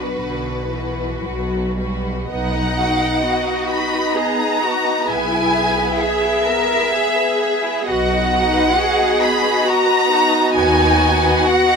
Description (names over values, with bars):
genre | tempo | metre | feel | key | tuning
classical, slow romantic movement for string orchestra | 65 BPM | 3/4 | uneven beats, rubato | B major | A4 = 443 Hz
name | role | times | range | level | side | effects
warm symphonic violin section | melody | 0.0-11.8 s | B4 to B5 | -19 LUFS | equal | none
warm symphonic violin section | second line | 0.0-11.8 s | B3 to F#5 | -23 LUFS | left 1 dB | none
rich symphonic viola section | accompaniment | 0.0-11.8 s | D3 to G#4 | -22 LUFS | equal | none
rich symphonic cello section | bass | 0.0-11.8 s | B2 to A#4 | -22 LUFS | equal | none
rich symphonic double bass section | bass | 0.0-11.3 s | B1 to D#2 | -25 LUFS | right 1 dB | none
room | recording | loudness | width
light reverb | minimal, uncompressed stereo recording | -15 LUFS | side -5 dB against mid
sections
0.0-2.3 A section; 2.3-11.8 B section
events
none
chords
0.0 Bm; 2.3 B; 5.1 E/B; 7.9 B; 10.6 B/D#